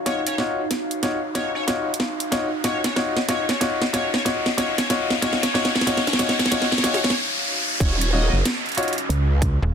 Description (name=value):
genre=glitch hop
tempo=93 BPM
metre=4/4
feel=swing 63% on 16ths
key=Eb minor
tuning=A4 = 440 Hz
part: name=riser and downlifter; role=sound effects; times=0.0-9.7 s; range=none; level=-27 LUFS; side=left 1 dB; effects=none
part: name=warbly tape-like pad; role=texture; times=0.0-9.7 s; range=Db4 to F5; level=-32 LUFS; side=right 1 dB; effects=chorus, built-in reverb, sidechain pumping
part: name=sync lead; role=melody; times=0.1-8.4 s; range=Db5 to Eb5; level=-29 LUFS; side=equal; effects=analog chorus, dub echo
part: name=bright baby grand piano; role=stabs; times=0.1-8.9 s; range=Eb4 to Db5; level=-26 LUFS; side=left 3 dB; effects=sidechain pumping, dub echo
part: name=drum and bass drum kit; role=drums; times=0.1-9.6 s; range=hi-hat, snare drum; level=-23 LUFS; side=right 1 dB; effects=overdrive, small room ambience
part: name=growl bass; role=bass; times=7.8-9.6 s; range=Eb1 to Db2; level=-20 LUFS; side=right 1 dB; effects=chorus
part: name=electronic kick drum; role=drums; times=7.8-9.6 s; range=none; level=-21 LUFS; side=equal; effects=overdrive, small room ambience
part: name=slap-like FM bass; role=bass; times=9.6-9.7 s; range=Eb1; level=-19 LUFS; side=equal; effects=none
room=wet studio reverb, RT60 0.5 s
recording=dense, heavily limited modern master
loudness=-19 LUFS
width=side -7 dB against mid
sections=0.0-7.8 A section; 7.8-9.7 B section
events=build-up 0.0-7.8; drum fill 0.0-7.2; riser 0.0-7.8; stop 7.2-7.8; drop 7.8-9.7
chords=0.0 Ebm9